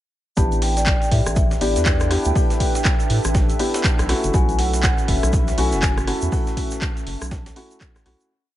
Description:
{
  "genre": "deep house",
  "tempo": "121 BPM",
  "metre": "4/4",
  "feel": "swing 60% on 16ths",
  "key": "unclear",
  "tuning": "A4 = 441 Hz",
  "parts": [
    { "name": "vibraphone with soft mallets", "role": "melody", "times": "0.4-8.0 s", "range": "D5 to A5", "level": "-28 LUFS", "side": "left 2 dB", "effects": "vintage 12-bit sampler grit, tape echo" },
    { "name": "dark analog pad", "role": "sustained chords", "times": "0.4-8.3 s", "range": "C#4 to E5", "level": "-33 LUFS", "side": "right 2 dB", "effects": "chorus, sidechain pumping" },
    { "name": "felt-muted upright piano", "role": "stabs", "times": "0.4-8.3 s", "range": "A3 to G4", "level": "-26 LUFS", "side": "left 1 dB", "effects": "sidechain pumping, dub echo" },
    { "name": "round analog bass", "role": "bass", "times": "0.4-8.2 s", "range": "F#1 to A2", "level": "-22 LUFS", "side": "equal", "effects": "sidechain pumping" },
    { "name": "breakbeat sampler-style drum kit", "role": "drums", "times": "0.4-8.2 s", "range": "hi-hat, snare drum", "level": "-35 LUFS", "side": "right 1 dB", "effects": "high-pass filter on hats, high-pass filter on snare, dub echo" },
    { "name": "electronic kick drum", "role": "drums", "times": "0.4-7.9 s", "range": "none", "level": "-20 LUFS", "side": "equal", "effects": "none" },
    { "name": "egg shaker", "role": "percussion", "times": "0.4-8.3 s", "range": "none", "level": "-34 LUFS", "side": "right 2 dB", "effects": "none" },
    { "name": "warbly tape-like pad", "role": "texture", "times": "0.4-8.3 s", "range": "C#4 to G5", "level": "-32 LUFS", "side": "equal", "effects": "chorus, built-in reverb, sidechain pumping" },
    { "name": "punchy analog drum machine", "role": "drums", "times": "0.5-8.3 s", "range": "handclaps, hi-hat, rim click", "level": "-26 LUFS", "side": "equal", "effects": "none" },
    { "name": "marimba with soft mallets", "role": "melody", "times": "0.8-3.2 s", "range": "D5 to G5", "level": "-32 LUFS", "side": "right 4 dB", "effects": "dub echo" }
  ],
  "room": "light reverb, small room ambience",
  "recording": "echo-heavy mix, nothing above 11.0 kHz",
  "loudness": "-17 LUFS",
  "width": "side -14 dB against mid",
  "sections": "0.4-8.3 drop",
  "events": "drop 0.4-8.3; fade-out 5.7-8.3",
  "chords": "0.4 A9sus4; 4.1 B9sus4"
}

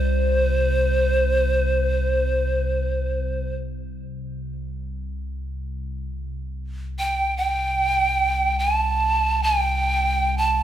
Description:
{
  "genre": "world meditative, free-time meditation music",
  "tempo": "free time",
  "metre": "none",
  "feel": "none",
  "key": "unclear",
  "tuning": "A4 = 440 Hz",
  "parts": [
    { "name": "breathy pan flute", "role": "melody", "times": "0.0-10.6 s", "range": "C5 to A5", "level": "-21 LUFS", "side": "right 2 dB", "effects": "plate reverb" },
    { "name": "deep rumbling drone", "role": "drone", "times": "0.0-10.6 s", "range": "C2", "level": "-25 LUFS", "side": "left 1 dB", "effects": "built-in reverb" }
  ],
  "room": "wet studio reverb, RT60 0.6 s",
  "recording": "none",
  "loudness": "-19 LUFS",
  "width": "side -11 dB against mid",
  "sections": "0.0-6.1 A section; 6.1-10.6 A section",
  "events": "none",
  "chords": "none"
}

